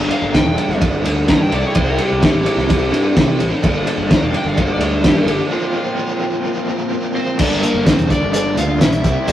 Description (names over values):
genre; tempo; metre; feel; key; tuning
classic rock; 128 BPM; 4/4; straight; G dorian; A4 = 440 Hz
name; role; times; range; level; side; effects
overdriven slide guitar; melody; 0.0-9.3 s; F4 to Bb5; -23 LUFS; left 1 dB; none
tonewheel organ; sustained chords; 0.0-9.3 s; Bb3 to D5; -30 LUFS; left 1 dB; none
crunchy overdriven guitar; riff; 0.0-9.3 s; G2 to E4; -24 LUFS; equal; tremolo
raw garage guitar; riff; 0.0-9.3 s; G2 to Bb4; -25 LUFS; equal; overdrive, tremolo
fuzz picked electric bass; bass; 0.0-9.3 s; E1 to C3; -20 LUFS; equal; overdrive
cloth-damped thuddy drum kit; drums; 0.1-9.3 s; crash cymbal, hi-hat, kick drum, ride cymbal, snare drum; -17 LUFS; equal; none
cowbell; percussion; 0.1-9.3 s; none; -33 LUFS; right 5 dB; none
fuzz lead guitar; second line; 7.2-9.3 s; Bb3 to F4; -24 LUFS; right 3 dB; distortion
room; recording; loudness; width
moderate stone room reverb, RT60 1.0 s; rough rehearsal-room recording, warm saturation; -14 LUFS; side -12 dB against mid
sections
0.0-7.4 A section; 7.4-9.3 B section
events
electric slide guitar solo 0.0-7.4; break 5.5-7.4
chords
0.0 Gm; 1.5 Cadd9; 3.6 Gm; 5.5 Bbsus2; 7.4 Gm